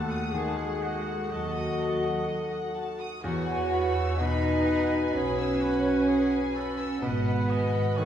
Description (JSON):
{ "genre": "cinematic, emotional film score for orchestra", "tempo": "63 BPM", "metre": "4/4", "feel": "rubato", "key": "unclear", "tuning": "A4 = 440 Hz", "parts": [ { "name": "dark studio violin section", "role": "melody", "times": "0.0-8.1 s", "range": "F#5 to G#5", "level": "-39 LUFS", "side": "left 4 dB", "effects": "none" }, { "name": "mellow hollow small flute group", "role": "second line", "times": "0.0-8.1 s", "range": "F#4 to F#5", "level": "-35 LUFS", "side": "left 3 dB", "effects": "none" }, { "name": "warm oboe", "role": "second line", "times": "0.0-8.1 s", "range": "F#4 to D#5", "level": "-37 LUFS", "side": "right 1 dB", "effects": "none" }, { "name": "warm studio violin section", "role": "second line", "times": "0.0-8.1 s", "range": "D#5 to E6", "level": "-40 LUFS", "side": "left 2 dB", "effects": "none" }, { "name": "bright baby grand piano", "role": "accompaniment", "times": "0.0-8.1 s", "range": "D#2 to D#3", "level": "-35 LUFS", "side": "left 1 dB", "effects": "none" }, { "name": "warm studio viola section", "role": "accompaniment", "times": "0.0-8.1 s", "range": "F#4 to B4", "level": "-38 LUFS", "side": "right 4 dB", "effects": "none" }, { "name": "mellow French horn section", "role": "sustained chords", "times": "0.0-8.1 s", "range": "F#4 to B4", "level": "-34 LUFS", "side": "left 2 dB", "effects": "none" }, { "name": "dark studio double bass section", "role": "bass", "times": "0.0-7.8 s", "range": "G#1 to E2", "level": "-33 LUFS", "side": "right 2 dB", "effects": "none" }, { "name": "warm studio cello section", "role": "bass", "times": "0.0-8.1 s", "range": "F#3 to F#4", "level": "-29 LUFS", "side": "right 1 dB", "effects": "none" } ], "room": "wet recital hall reverb, RT60 1.6 s", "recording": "heard from further back in the room", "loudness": "-25 LUFS", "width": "side -10 dB against mid", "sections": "0.0-8.1 A section", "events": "none", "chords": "0.0 D#dim; 3.2 Eadd9; 7.0 G#m7", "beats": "0.35 1.31 2.27 | 3.24 4.20 5.14 6.08 | 7.02 7.97" }